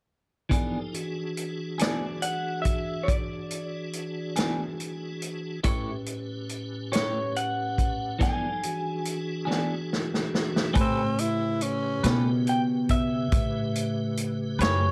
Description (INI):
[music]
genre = slow blues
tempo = 47 BPM (dotted quarters)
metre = 12/8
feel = straight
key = A mixolydian from 10.8 s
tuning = A4 = 440 Hz
[part]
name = clean electric guitar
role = accompaniment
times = 0.5-14.9 s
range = E3 to C#5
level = -33 LUFS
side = equal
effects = tremolo
[part]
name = tonewheel organ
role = sustained chords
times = 0.5-14.9 s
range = A2 to B4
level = -36 LUFS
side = equal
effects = slow rotary speaker, chorus vibrato
[part]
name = vintage drum kit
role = drums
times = 0.5-14.8 s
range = hi-hat, kick drum, snare drum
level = -30 LUFS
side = equal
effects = none
[part]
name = electric guitar through a small old amp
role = melody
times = 1.8-14.9 s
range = C#5 to G#5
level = -33 LUFS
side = equal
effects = none
[part]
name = growling tenor saxophone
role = second line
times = 10.8-12.2 s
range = C4 to E4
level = -31 LUFS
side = equal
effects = none
[part]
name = upright bass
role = bass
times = 10.8-14.9 s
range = F#2 to B2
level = -29 LUFS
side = equal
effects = none
[sound]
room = light reverb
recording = dark, warm production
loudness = -28 LUFS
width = mono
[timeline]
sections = 0.5-10.8 A section; 10.8-14.9 B section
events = drum fill 9.5-10.8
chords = 0.5 E7; 5.6 A7; 8.2 E7; 10.8 A9